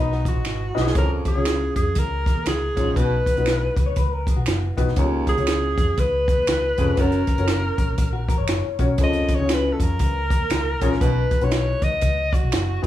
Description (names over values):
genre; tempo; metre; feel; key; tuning
uptempo 1960s-style soul; 120 BPM; 4/4; swing 61% on 8ths; Db mixolydian; A4 = 440 Hz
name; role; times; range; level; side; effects
warm alto saxophone; melody; 0.0-12.9 s; Eb4 to Eb5; -25 LUFS; equal; tape echo
dark upright piano; accompaniment; 0.0-12.9 s; Cb3 to Eb5; -27 LUFS; left 4 dB; none
electric guitar through a small old amp; riff; 0.0-0.8, 3.9-4.9, 8.1-9.0 s; Gb4 to Db5; -31 LUFS; left 7 dB; none
vintage muted fingered electric bass; bass; 0.0-12.9 s; F1 to F2; -24 LUFS; equal; none
compact cocktail drum kit; drums; 0.1-12.9 s; hi-hat, kick drum, snare drum; -23 LUFS; equal; none
finger snaps; percussion; 0.4-12.7 s; none; -31 LUFS; right 5 dB; none
warm baritone saxophone; riff; 1.0-11.3 s; Eb2 to Cb3; -27 LUFS; right 4 dB; none
room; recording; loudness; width
light reverb; studio reverb; -19 LUFS; side -13 dB against mid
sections
1.0-12.9 A section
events
drum fill 0.5-1.0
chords
0.0 Cb; 1.0 Db; 3.0 Cb; 5.0 Db; 7.0 Gb; 9.0 Db; 11.0 Cb